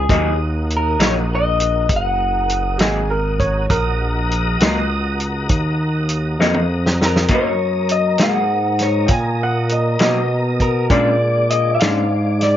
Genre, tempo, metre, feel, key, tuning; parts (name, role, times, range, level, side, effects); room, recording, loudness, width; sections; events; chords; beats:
slow blues; 67 BPM (dotted quarters); 12/8; straight; Eb minor; A4 = 439 Hz
electric guitar through a small old amp; melody; 0.0-12.6 s; Ab4 to Gb5; -19 LUFS; left 2 dB
tonewheel organ; sustained chords; 0.0-12.6 s; Ab3 to Eb5; -26 LUFS; equal; chorus vibrato, slow rotary speaker
smooth synth bass; bass; 0.0-12.6 s; Gb1 to B2; -19 LUFS; equal
electric guitar through a small old amp; accompaniment; 0.1-12.0 s; Bb2 to Eb4; -20 LUFS; left 2 dB; tremolo
warm soul drum kit; drums; 0.1-12.5 s; hi-hat, kick drum, snare drum, toms; -18 LUFS; equal
warm upright piano; second line; 2.8-10.5 s; G4 to Ab5; -23 LUFS; right 3 dB
light reverb; nothing above 7.5 kHz; -15 LUFS; side -11 dB against mid
0.0-12.6 A section
drum fill 6.4-7.3
0.1 Ebm; 7.3 Bmaj7; 10.9 Bb7#9
| 0.10 1.00 1.90 2.80 | 3.70 4.60 5.50 6.40 | 7.30 8.20 9.10 10.01 | 10.91 11.81